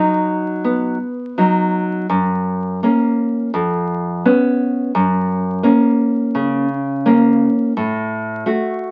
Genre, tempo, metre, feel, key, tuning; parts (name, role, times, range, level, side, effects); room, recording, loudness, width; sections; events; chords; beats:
romantic piece for solo classical guitar; 84 BPM; 4/4; rubato; A4 = 440 Hz
nylon-string guitar; solo; 0.0-8.9 s; E#2 to F#4; -17 LUFS; equal
moderate studio reverb, RT60 0.5 s; very old 78 rpm record, vinyl crackle; -17 LUFS; mono
0.0-8.9 A section
0.0 B; 2.1 F#; 3.5 C#7/E#; 4.9 F#; 7.8 F#m/A
0.64 1.37 | 2.10 2.82 3.53 4.25 | 4.95 5.64 6.35 7.05 | 7.76 8.45